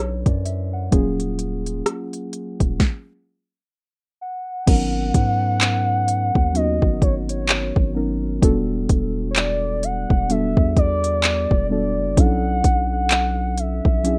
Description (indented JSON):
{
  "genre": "contemporary R&B",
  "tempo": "64 BPM",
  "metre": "4/4",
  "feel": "swing 58% on 16ths",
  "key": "G# minor",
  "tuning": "A4 = 437 Hz",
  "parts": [
    { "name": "muted felt-like synth keys", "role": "accompaniment", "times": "0.0-14.2 s", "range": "F#3 to F#5", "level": "-27 LUFS", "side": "equal", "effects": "chorus" },
    { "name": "long sustained 808-style bass", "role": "bass", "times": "0.0-14.2 s", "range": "D#1 to G#2", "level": "-26 LUFS", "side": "equal", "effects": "none" },
    { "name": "smooth R&B drum kit", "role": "drums", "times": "0.3-14.2 s", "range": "crash cymbal, handclaps, hi-hat, kick drum, rim click, snare drum", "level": "-21 LUFS", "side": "equal", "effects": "overdrive" },
    { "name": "gliding portamento lead", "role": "melody", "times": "4.2-14.2 s", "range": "C#5 to F#5", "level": "-26 LUFS", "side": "equal", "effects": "chorus, digital delay" }
  ],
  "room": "little or no reverb",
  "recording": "rough home demo mix",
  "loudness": "-20 LUFS",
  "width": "mono",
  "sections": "0.0-4.7 A section; 4.7-14.2 B section",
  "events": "stop 2.8-4.7",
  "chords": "0.0 Bm11; 0.9 D#m11; 4.7 G#m11; 8.4 Em11; 12.2 Bm11"
}